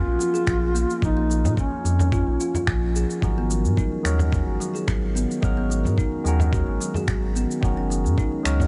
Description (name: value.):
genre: organic downtempo.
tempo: 109 BPM.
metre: 4/4.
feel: straight.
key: unclear.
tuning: A4 = 440 Hz.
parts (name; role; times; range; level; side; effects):
mellow duduk; melody; 0.0-2.6 s; C#4 to E#4; -30 LUFS; equal; tape echo.
kalimba; arpeggios; 0.0-8.7 s; E#3 to G#4; -30 LUFS; equal; digital delay.
warm sub bass; bass; 0.0-8.7 s; F#1 to A#2; -25 LUFS; equal; sidechain pumping.
quartz singing bowl; texture; 0.0-8.7 s; A#4; -54 LUFS; equal; none.
electronic cabasa and finger snaps; drums; 0.2-8.7 s; none; -34 LUFS; equal; small room ambience.
electronic kick drum; drums; 0.5-8.3 s; none; -26 LUFS; equal; overdrive, small room ambience.
frame drum; percussion; 1.4-8.7 s; none; -30 LUFS; equal; none.
barky tine electric piano; accompaniment; 3.2-8.7 s; D#3 to A#4; -32 LUFS; equal; overdrive, phaser, sidechain pumping, digital delay.
room: light reverb, small room ambience.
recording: nothing above 11.0 kHz.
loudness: -23 LUFS.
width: mono.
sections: 0.0-8.7 A section.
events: none.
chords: 0.0 A#m; 3.2 G#m7; 7.6 F#6.